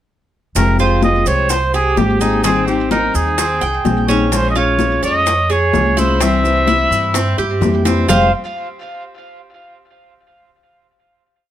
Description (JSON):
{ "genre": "latin, Cuban son and guajira", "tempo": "128 BPM", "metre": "4/4", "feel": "straight", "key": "F minor", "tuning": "A4 = 440 Hz", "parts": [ { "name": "clear trumpet", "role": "melody", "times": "0.6-8.3 s", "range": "G4 to E5", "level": "-17 LUFS", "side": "right 1 dB", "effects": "none" }, { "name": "fingerpicked steel-string acoustic guitar", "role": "accompaniment", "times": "0.6-8.3 s", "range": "F2 to Ab4", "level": "-19 LUFS", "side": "left 4 dB", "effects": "none" }, { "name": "upright bass", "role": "bass", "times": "0.6-8.3 s", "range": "F1 to G2", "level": "-19 LUFS", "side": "equal", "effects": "none" }, { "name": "bongos", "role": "percussion", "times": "0.6-8.2 s", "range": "none", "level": "-24 LUFS", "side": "left 6 dB", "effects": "none" }, { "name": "congas", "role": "percussion", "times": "0.6-8.2 s", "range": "none", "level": "-23 LUFS", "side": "left 2 dB", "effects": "none" }, { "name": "maracas", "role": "percussion", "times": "0.6-8.2 s", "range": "none", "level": "-27 LUFS", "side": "right 8 dB", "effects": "none" }, { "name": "Cuban tres", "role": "arpeggios", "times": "0.8-8.3 s", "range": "C4 to G5", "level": "-20 LUFS", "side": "right 3 dB", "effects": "tape echo" } ], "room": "moderate studio reverb, RT60 0.6 s", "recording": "none", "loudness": "-12 LUFS", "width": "side -11 dB against mid", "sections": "0.6-8.1 verse; 8.1-10.0 final chord", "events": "drum fill 7.9", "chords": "0.6 Fmadd9; 2.4 Abmaj7; 4.3 Bbm7; 6.2 C; 8.1 F5" }